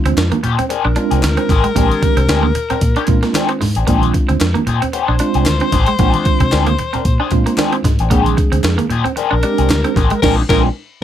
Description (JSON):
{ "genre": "funk", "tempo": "113 BPM", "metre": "4/4", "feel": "swing 56% on 16ths", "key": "unclear", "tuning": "A4 = 439 Hz", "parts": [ { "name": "mellow tine electric piano", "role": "stabs", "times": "0.0-10.7 s", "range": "Ab3 to Ab4", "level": "-20 LUFS", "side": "right 6 dB", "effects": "medium stereo tremolo" }, { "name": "electric guitar at the edge of break-up", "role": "accompaniment", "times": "0.1-10.7 s", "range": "C4 to Bb4", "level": "-20 LUFS", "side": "left 10 dB", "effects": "wah, harmonic tremolo" }, { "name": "electric guitar at the edge of break-up", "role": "riff", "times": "0.1-10.2 s", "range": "Ab3 to D4", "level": "-22 LUFS", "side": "right 6 dB", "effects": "none" }, { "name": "vintage muted fingered electric bass", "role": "bass", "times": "0.1-10.7 s", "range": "A1 to Bb2", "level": "-17 LUFS", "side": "equal", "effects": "none" }, { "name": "breakbeat sampler-style drum kit", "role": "drums", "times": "0.1-10.7 s", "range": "crash cymbal, hi-hat, kick drum, snare drum", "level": "-18 LUFS", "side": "equal", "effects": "none" }, { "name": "group handclap", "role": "percussion", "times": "0.2-9.8 s", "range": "none", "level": "-27 LUFS", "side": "left 4 dB", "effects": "none" }, { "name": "congas", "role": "percussion", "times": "0.3-10.1 s", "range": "none", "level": "-27 LUFS", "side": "right 4 dB", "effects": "none" }, { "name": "clear tenor saxophone", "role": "second line", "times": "0.7-10.6 s", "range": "Bb4 to C5", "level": "-20 LUFS", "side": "left 6 dB", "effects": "none" } ], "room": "light reverb", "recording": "none", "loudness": "-12 LUFS", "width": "side -10 dB against mid", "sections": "0.0-11.0 A section", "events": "band accent 10.2-11.0", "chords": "0.0 Bb9" }